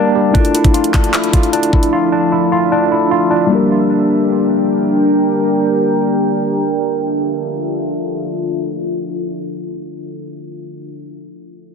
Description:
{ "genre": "hip hop, trap", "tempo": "152 BPM", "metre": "4/4", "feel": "half-time", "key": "D minor", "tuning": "A4 = 442 Hz", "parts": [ { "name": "deep dark ambient pad", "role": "sustained chords", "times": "0.0-10.4 s", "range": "F3 to G5", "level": "-19 LUFS", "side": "right 2 dB", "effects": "chorus, built-in reverb, low-pass filter" }, { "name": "tine electric piano", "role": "arpeggios", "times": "0.0-3.5 s", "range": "G3 to F4", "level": "-15 LUFS", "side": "equal", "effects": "medium stereo tremolo, low-pass filter, tape echo" }, { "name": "muted felt-like synth keys", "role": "accompaniment", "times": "0.3-6.6 s", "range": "G3 to Bb4", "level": "-16 LUFS", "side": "left 4 dB", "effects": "chorus, low-pass filter" }, { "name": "trap drum kit", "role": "drums", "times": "0.3-1.9 s", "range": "handclaps, hi-hat, kick drum", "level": "-13 LUFS", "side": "equal", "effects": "none" } ], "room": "light reverb", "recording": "dense, heavily limited modern master", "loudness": "-13 LUFS", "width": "side -6 dB against mid", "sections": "0.3-6.7 A section; 6.7-9.8 B section", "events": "break 0.0-0.3; filter sweep 0.3-6.7", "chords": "0.3 Dmadd9; 3.5 Gm; 6.7 Dmadd9" }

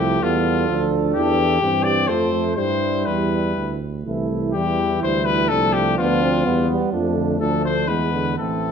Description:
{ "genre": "classical, brass quintet", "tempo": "124 BPM", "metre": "3/4", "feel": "uneven beats, rubato", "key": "unclear", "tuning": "A4 = 440 Hz", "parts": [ { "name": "clear trumpet", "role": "melody", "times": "0.0-8.7 s", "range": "F4 to D5", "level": "-22 LUFS", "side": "left 7 dB", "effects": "none" }, { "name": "mellow flugelhorn", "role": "second line", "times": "0.0-8.7 s", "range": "B3 to A4", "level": "-26 LUFS", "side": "right 10 dB", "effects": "none" }, { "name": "warm French horn", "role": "accompaniment", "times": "0.0-8.7 s", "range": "G3 to D4", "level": "-25 LUFS", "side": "left 3 dB", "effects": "none" }, { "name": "warm euphonium", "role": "accompaniment", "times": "0.0-8.7 s", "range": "D3 to A3", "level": "-27 LUFS", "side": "right 5 dB", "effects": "none" }, { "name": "mellow bass trombone", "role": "bass", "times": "0.0-8.7 s", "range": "A1 to G2", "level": "-24 LUFS", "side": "right 3 dB", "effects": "none" } ], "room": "moderate scoring stage reverb, RT60 1.6 s", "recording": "close, detailed microphones", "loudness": "-18 LUFS", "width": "side -7 dB against mid", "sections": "0.0-8.7 A section", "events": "none", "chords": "0.0 Bdim/C; 1.2 C/E; 2.1 F; 2.6 G; 4.1 C; 5.5 Bdim/C; 6.9 Dm/F; 7.4 Dm; 7.9 E7" }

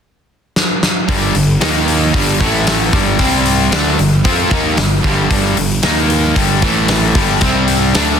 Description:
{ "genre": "hard rock", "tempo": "114 BPM", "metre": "4/4", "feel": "straight", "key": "G minor", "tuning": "A4 = 439 Hz", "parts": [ { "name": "big rock drum kit", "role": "drums", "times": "0.6-8.1 s", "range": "hi-hat, kick drum, snare drum", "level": "-16 LUFS", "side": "equal", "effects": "none" }, { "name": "distorted electric guitar", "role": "riff", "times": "1.1-8.2 s", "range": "G2 to F4", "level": "-16 LUFS", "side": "left 10 dB", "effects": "overdrive" }, { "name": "overdriven semi-hollow guitar", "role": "riff", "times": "1.1-8.2 s", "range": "G2 to F4", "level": "-17 LUFS", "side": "right 9 dB", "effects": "none" }, { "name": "fuzz fingered electric bass", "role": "bass", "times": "1.1-8.2 s", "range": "G1 to F2", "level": "-19 LUFS", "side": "equal", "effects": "overdrive" } ], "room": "small room reverb", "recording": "dense, heavily limited modern master", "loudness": "-11 LUFS", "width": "side -7 dB against mid", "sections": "0.0-1.1 A section; 1.1-8.2 B section", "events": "drum fill 0.6-1.1", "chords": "0.0 N.C.; 1.1 G5; 1.6 Eb5; 2.1 G5; 2.4 A5; 2.9 G5; 3.2 C5; 3.7 Gm; 5.8 Eb5; 6.4 G5; 6.6 A5; 7.2 G5; 7.4 C5" }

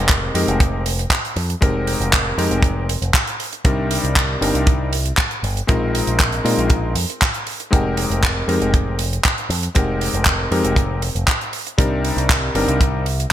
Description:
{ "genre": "nu-disco, nu disco", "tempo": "118 BPM", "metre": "4/4", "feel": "straight", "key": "F dorian", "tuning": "A4 = 440 Hz", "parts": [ { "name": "clear electric grand piano", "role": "accompaniment", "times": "0.0-13.0 s", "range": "G3 to Bb4", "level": "-22 LUFS", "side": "left 1 dB", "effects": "sidechain pumping, digital delay" }, { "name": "picked electric bass with an envelope filter", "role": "bass", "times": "0.0-13.2 s", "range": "F1 to Bb2", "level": "-22 LUFS", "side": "equal", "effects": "tube saturation" }, { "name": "kick drum", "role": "drums", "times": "0.1-12.9 s", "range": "none", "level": "-18 LUFS", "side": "equal", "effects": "small room reverb" }, { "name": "tight funk drum kit", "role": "drums", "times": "0.1-13.3 s", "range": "handclaps, hi-hat", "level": "-21 LUFS", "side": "right 2 dB", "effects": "small room reverb, gated reverb" } ], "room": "light reverb, studio reverb", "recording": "bright 1980s-style digital production", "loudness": "-16 LUFS", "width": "side -12 dB against mid", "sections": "0.0-13.3 A section", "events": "none", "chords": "0.0 Fm11; 3.7 Cm9; 5.7 Bb9sus4; 7.7 Fm11; 11.8 Cm9" }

